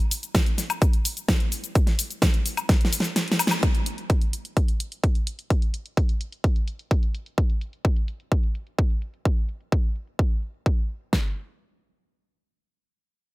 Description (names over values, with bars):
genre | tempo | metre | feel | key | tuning
EDM | 128 BPM | 4/4 | straight | none | none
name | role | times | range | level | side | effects
big-room dance drum kit | drums | 0.0-11.1 s | hi-hat, shaker, snare drum, woodblock | -26 LUFS | left 1 dB | low-pass filter on hats, low-pass filter on perc, low-pass filter on snare
big-room dance drum kit | drums | 0.3-11.2 s | kick drum, snare drum | -21 LUFS | equal | none
room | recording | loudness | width
little or no reverb | none | -22 LUFS | side -20 dB against mid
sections
0.0-3.6 A section; 3.6-11.1 B section; 11.1-13.3 C section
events
drop 0.0-3.6; drum fill 2.7-3.6; kick drops out 3.2-3.6; band accent 3.5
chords
none